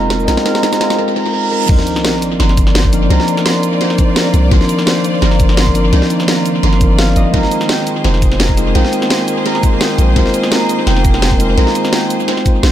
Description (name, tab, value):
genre	liquid drum and bass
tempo	170 BPM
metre	4/4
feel	swing 53% on 16ths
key	C minor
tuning	A4 = 436 Hz
part	mellow tine electric piano	accompaniment	0.0-12.7 s	F3 to C5	-16 LUFS	equal	wide subtle chorus, tape echo
part	rich symphonic string section	sustained chords	0.0-12.7 s	Eb3 to D5	-21 LUFS	left 1 dB	none
part	concert harp	arpeggios	0.0-12.7 s	Bb4 to C6	-21 LUFS	right 2 dB	dub echo
part	long sustained 808-style bass	bass	0.0-12.7 s	F1 to C2	-13 LUFS	equal	none
part	drum and bass drum kit	drums	0.1-12.7 s	cabasa, crash cymbal, hi-hat, snare drum	-18 LUFS	equal	small room ambience, tape echo
part	reverse cymbal and sub drop	sound effects	1.1-3.1 s	none	-25 LUFS	right 2 dB	none
part	electronic kick drum	drums	1.7-12.5 s	none	-13 LUFS	equal	small room ambience
room	light reverb, digital ambience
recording	echo-heavy mix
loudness	-11 LUFS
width	side -11 dB against mid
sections	0.0-1.7 A section; 1.7-12.7 B section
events	build-up 0.0-1.7; drum fill 0.0-1.0; filter sweep on tine electric piano 0.0-1.7; break 1.0-1.7; reverse cymbal 1.1-1.7; drop 1.7-12.7; impact 1.7-3.1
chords	0.0 Bb9sus4; 1.7 Cm11; 7.3 Bb9sus4